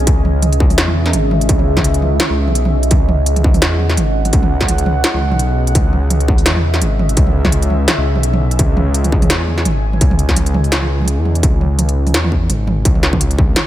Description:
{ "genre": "half-time drum and bass", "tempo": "169 BPM", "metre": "4/4", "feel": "swing 56% on 16ths, half-time", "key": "C# minor", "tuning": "A4 = 442 Hz", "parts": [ { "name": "deep dark ambient pad", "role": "sustained chords", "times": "0.0-11.4 s", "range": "C#4 to G#5", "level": "-22 LUFS", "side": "right 1 dB", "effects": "chorus, built-in reverb, sidechain pumping" }, { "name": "dark detuned saw bass", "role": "bass", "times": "0.0-13.6 s", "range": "G#1 to E2", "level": "-15 LUFS", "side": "equal", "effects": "none" }, { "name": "electronic kick drum", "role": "drums", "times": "0.1-13.5 s", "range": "none", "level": "-14 LUFS", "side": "equal", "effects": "distortion" }, { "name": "industrial drum kit", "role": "drums", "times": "0.1-13.6 s", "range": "hi-hat, snare drum, toms", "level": "-18 LUFS", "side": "right 1 dB", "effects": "none" } ], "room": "digital ambience", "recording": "none", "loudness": "-12 LUFS", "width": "side -13 dB against mid", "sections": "0.0-11.4 A section; 11.4-13.7 A section", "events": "drop 0.0-11.4, 11.4-13.7; kick drops out 11.1-11.4", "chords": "0.0 C#madd9; 11.4 C#m", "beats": "| 0.07 0.43 0.78 1.14 | 1.49 1.85 2.20 2.56 | 2.91 3.27 3.62 3.98 | 4.33 4.69 5.04 5.40 | 5.75 6.11 6.46 6.82 | 7.17 7.53 7.88 8.24 | 8.59 8.95 9.30 9.66 | 10.01 10.37 10.72 11.08 | 11.43 11.79 12.14 12.50 | 12.85 13.21 13.56" }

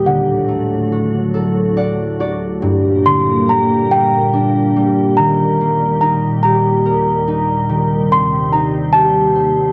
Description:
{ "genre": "children's music, lullaby", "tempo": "48 BPM (dotted quarters)", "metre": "6/8", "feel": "straight", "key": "G harmonic minor", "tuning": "A4 = 436 Hz", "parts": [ { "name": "concert harp", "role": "accompaniment", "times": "0.0-9.7 s", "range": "G2 to F#5", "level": "-18 LUFS", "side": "equal", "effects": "none" }, { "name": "soft additive organ-like pad", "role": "sustained chords", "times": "0.0-9.7 s", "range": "D2 to Bb3", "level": "-21 LUFS", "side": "equal", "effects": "ensemble chorus, built-in reverb" }, { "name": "celesta", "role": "melody", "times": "0.1-9.7 s", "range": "F#5 to C6", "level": "-18 LUFS", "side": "equal", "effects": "none" } ], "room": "moderate studio reverb, RT60 0.6 s", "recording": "worn, warbling old tape, cassette tape, warbly pitch drift", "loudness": "-15 LUFS", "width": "mono", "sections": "0.0-9.7 A section", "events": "harp fill 1.3-2.6", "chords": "0.1 D; 2.6 Gm; 5.2 Eb; 7.7 Cm/Eb", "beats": "| 0.06 1.34 | 2.62 3.90 | 5.17 6.43 | 7.68 8.93" }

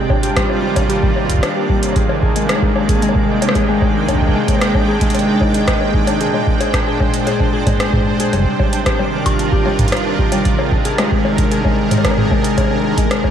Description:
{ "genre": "IDM", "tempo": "113 BPM", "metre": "4/4", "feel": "straight", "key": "Ab lydian", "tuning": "A4 = 440 Hz", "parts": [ { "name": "warm analog pad", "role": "sustained chords", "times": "0.0-13.3 s", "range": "Bb2 to G5", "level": "-20 LUFS", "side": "right 3 dB", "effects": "chorus, tremolo" }, { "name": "Celtic harp", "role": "arpeggios", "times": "0.0-13.3 s", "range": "Eb3 to Ab4", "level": "-18 LUFS", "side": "left 3 dB", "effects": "diffuse ambient delay" }, { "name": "backwards swelling texture", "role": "texture", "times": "0.0-13.3 s", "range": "D4 to D5", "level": "-28 LUFS", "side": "right 2 dB", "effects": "built-in reverb" }, { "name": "booming analog drum machine", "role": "drums", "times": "0.1-13.3 s", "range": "bongos, hi-hat, rim click, toms", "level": "-21 LUFS", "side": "left 1 dB", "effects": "none" }, { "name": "electronic kick drum", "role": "drums", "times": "0.1-13.3 s", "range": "none", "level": "-18 LUFS", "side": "right 1 dB", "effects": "none" } ], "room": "moderate cathedral reverb, RT60 5.2 s", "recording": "dreamy mix soaked in reverb", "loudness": "-13 LUFS", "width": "side -9 dB against mid", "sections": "0.0-13.3 A section", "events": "none", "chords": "0.0 Cm11; 2.0 Abmaj9#11/C; 6.2 Bb13; 8.3 Cm11; 10.5 Abadd9/C", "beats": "0.37 0.90 1.43 | 1.96 2.49 3.02 3.55 | 4.08 4.61 5.14 5.68 | 6.21 6.74 7.27 7.80 | 8.33 8.86 9.39 9.92 | 10.45 10.98 11.52 12.05 | 12.58 13.11" }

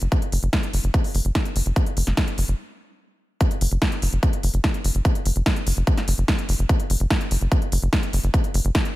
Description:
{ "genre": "psychedelic trance", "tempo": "146 BPM", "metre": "4/4", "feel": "straight", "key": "unclear", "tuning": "A4 = 439 Hz", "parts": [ { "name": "tight sequencer bass", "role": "bass", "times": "0.0-8.7 s", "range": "F#1", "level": "-21 LUFS", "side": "equal", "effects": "none" }, { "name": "techno drum kit", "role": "drums", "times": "0.0-8.9 s", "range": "hi-hat, snare drum", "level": "-27 LUFS", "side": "equal", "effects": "none" }, { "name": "electronic kick drum", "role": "drums", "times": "0.1-8.8 s", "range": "none", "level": "-21 LUFS", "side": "equal", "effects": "none" } ], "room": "digital ambience", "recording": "none", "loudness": "-20 LUFS", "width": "side -17 dB against mid", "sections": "0.0-3.4 A section; 3.4-9.0 B section", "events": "stop 2.6-3.4; drop 3.4-9.0", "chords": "none", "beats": "| 0.12 0.53 0.94 1.35 | 1.76 2.17 2.58 3.00 | 3.41 3.82 4.23 4.64 | 5.05 5.46 5.87 6.28 | 6.69 7.11 7.52 7.93 | 8.34 8.75" }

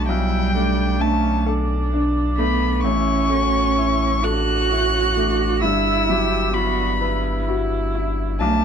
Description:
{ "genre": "neoclassical piano and strings", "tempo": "65 BPM", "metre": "3/4", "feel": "rubato", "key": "E dorian", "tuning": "A4 = 440 Hz", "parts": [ { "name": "muted violin", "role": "melody", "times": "0.0-8.6 s", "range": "G5 to F#6", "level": "-23 LUFS", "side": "left 5 dB", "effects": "none" }, { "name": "muted cello", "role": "second line", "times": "0.0-8.6 s", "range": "G3 to F#4", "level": "-23 LUFS", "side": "right 7 dB", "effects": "none" }, { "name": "clear upright piano", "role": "accompaniment", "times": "0.0-8.6 s", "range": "A1 to C#5", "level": "-24 LUFS", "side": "left 4 dB", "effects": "none" }, { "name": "muted viola", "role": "accompaniment", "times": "0.0-8.6 s", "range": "C#4 to G4", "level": "-28 LUFS", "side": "right 3 dB", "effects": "none" }, { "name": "pure sine sub bass", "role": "bass", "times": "0.0-8.6 s", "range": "G1 to B1", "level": "-23 LUFS", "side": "equal", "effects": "none" } ], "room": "light reverb", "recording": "dark, warm production", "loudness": "-17 LUFS", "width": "side -7 dB against mid", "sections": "0.0-8.6 A section", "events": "none", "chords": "0.1 Gadd9/B; 2.8 A; 5.6 Emadd9/G", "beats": "| 0.09 1.01 1.93 | 2.85 3.77 4.71 | 5.63 6.56 7.48 | 8.41" }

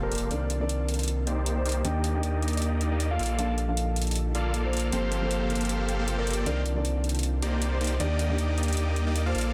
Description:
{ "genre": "future bass", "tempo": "156 BPM", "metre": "4/4", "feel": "swing 55% on 16ths, half-time", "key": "unclear", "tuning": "A4 = 440 Hz", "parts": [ { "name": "dark grand piano", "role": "melody", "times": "0.0-9.5 s", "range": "Bb4 to G5", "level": "-38 LUFS", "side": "equal", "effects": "digital delay" }, { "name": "felt-muted upright piano", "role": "accompaniment", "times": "0.0-9.4 s", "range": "Eb3 to Bb4", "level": "-37 LUFS", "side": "equal", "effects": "tape echo" }, { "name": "shimmering ambient pad", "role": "sustained chords", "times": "0.0-9.5 s", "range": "C3 to A4", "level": "-43 LUFS", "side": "equal", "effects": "none" }, { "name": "supersaw chords", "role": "riff", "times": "0.0-9.5 s", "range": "Bb3 to A5", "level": "-34 LUFS", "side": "equal", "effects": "low-pass filter" }, { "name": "saturated sub bass", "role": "bass", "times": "0.0-9.5 s", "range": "G1 to Eb2", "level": "-30 LUFS", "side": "equal", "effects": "none" }, { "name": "electronic hi-hat", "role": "drums", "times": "0.1-9.5 s", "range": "none", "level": "-37 LUFS", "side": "equal", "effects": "studio reverb" } ], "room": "little or no reverb", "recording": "dense, heavily limited modern master", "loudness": "-27 LUFS", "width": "mono", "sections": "0.0-9.5 A section", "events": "filter sweep on supersaw synth 0.0-9.5", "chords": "0.3 Cm9; 1.8 Ebmaj7; 3.2 Bbmaj7; 4.9 Gm11; 6.5 Cm9; 8.0 Ebmaj7", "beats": "| 0.31 0.69 1.08 1.46 | 1.85 2.23 2.62 3.00 | 3.39 3.77 4.16 4.54 | 4.92 5.31 5.69 6.08 | 6.46 6.85 7.23 7.62 | 8.00 8.39 8.77 9.16" }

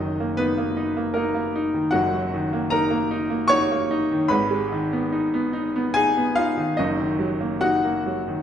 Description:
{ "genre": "classical, romantic nocturne for solo piano", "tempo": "66-79 BPM", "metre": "3/4", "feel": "rubato", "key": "Eb minor", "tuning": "A4 = 439 Hz", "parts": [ { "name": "clear baby grand piano", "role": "solo", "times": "0.0-8.4 s", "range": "F#1 to Db6", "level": "-20 LUFS", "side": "equal", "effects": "none" } ], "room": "wet recital hall reverb, RT60 1.4 s", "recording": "nothing above 10.8 kHz", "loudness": "-20 LUFS", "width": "side -9 dB against mid", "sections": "0.0-8.4 A section", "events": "none", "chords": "0.0 D#m/F#; 2.0 Ebm/Gb; 4.3 Abm; 6.8 Ebm/Gb", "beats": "0.39 1.18 | 1.95 2.73 3.52 | 4.32 5.12 5.95 | 6.78 7.62" }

